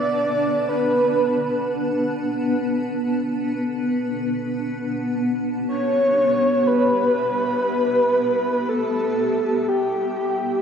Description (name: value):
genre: ambient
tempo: free time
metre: none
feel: none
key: unclear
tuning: A4 = 437 Hz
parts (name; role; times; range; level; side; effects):
- breathy flute-like synth lead; melody; 0.0-10.6 s; G4 to D5; -20 LUFS; equal; analog chorus, diffuse ambient delay
- granular cloud pad; sustained chords; 0.0-10.6 s; B3 to A5; -23 LUFS; left 1 dB; built-in reverb
room: wet lush hall reverb, RT60 3.0 s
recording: none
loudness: -19 LUFS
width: side -7 dB against mid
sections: 0.0-10.6 A section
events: none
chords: 0.0 Bm; 4.7 Em